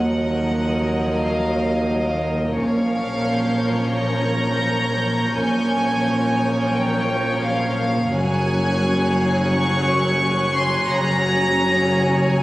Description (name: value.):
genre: cinematic, suspense film score.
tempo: 87 BPM.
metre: 4/4.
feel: straight.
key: unclear.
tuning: A4 = 440 Hz.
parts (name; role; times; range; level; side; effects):
rich studio violin section; melody; 0.0-12.4 s; F5 to C#6; -24 LUFS; equal; none.
rich studio violin section; second line; 0.0-12.4 s; G#4 to Eb5; -26 LUFS; left 1 dB; none.
warm studio viola section; accompaniment; 0.0-12.4 s; F3 to Db4; -25 LUFS; equal; none.
dark studio cello section; bass; 0.0-12.4 s; Eb2 to Bb2; -24 LUFS; right 1 dB; none.
rich studio double bass section; bass; 0.0-12.4 s; F#1 to Eb2; -26 LUFS; right 1 dB; none.
saturated sub bass; drone; 0.0-12.4 s; F#1 to Eb2; -30 LUFS; equal; none.
rich studio violin section; texture; 2.6-12.4 s; G#5 to G6; -32 LUFS; equal; none.
room: wet stone room reverb, RT60 1.4 s.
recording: recorded on a phone in the room, club reverb.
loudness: -18 LUFS.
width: side -17 dB against mid.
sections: 0.0-12.4 A section.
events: none.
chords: 0.0 Ebmadd9; 2.6 Bbm; 8.1 F#sus2.